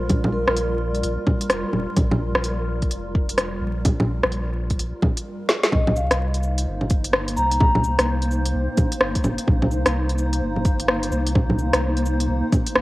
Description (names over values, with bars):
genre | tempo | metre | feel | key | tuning
future garage | 128 BPM | 4/4 | swing 62% on 16ths | C minor | A4 = 440 Hz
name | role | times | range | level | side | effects
granular cloud pad | sustained chords | 0.0-12.8 s | G3 to C5 | -27 LUFS | equal | built-in reverb, sidechain pumping
warm sub bass | bass | 0.0-12.8 s | F1 to C2 | -25 LUFS | equal | sidechain pumping
deep house drum kit | drums | 0.1-12.8 s | bongos, cabasa, hi-hat, rim click, snare drum | -22 LUFS | equal | cassette tape
electronic kick drum | drums | 0.1-12.6 s | none | -21 LUFS | equal | cassette tape
vibraphone with soft mallets | melody | 0.3-0.7, 5.7-8.1 s | Bb4 to Bb5 | -26 LUFS | left 1 dB | analog delay
room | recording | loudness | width
light reverb, digital ambience | home recording on cassette, vinyl crackle | -19 LUFS | side -18 dB against mid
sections
0.0-5.7 A section; 5.7-12.8 B section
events
drum fill 5.5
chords
0.0 Gm7; 5.7 Cm7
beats
| 0.10 0.57 1.04 1.51 | 1.98 2.44 2.91 3.38 | 3.85 4.32 4.79 5.26 | 5.73 6.20 6.66 7.13 | 7.60 8.07 8.54 9.01 | 9.48 9.95 10.41 10.88 | 11.35 11.82 12.29 12.76